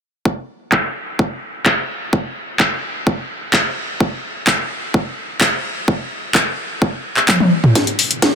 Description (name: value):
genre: EDM, festival progressive house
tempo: 128 BPM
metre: 4/4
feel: straight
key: none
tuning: none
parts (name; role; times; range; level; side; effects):
- electronic kick drum; drums; 0.3-8.3 s; none; -18 LUFS; equal; high-pass filter on kick, high-pass filter on room
- house drum kit; drums; 0.7-8.3 s; handclaps, hi-hat, snare drum, toms; -17 LUFS; equal; low-pass filter on snare, low-pass filter on toms, low-pass filter on hats, low-pass filter on room
room: light reverb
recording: dense, heavily limited modern master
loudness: -16 LUFS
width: side -6 dB against mid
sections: 0.3-7.8 A section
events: drum fill 7.3-7.8, 7.8-8.3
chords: none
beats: | 0.25 0.72 1.19 1.66 | 2.13 2.60 3.07 3.54 | 4.00 4.47 4.94 5.41 | 5.88 6.35 6.82 7.29 | 7.75 8.22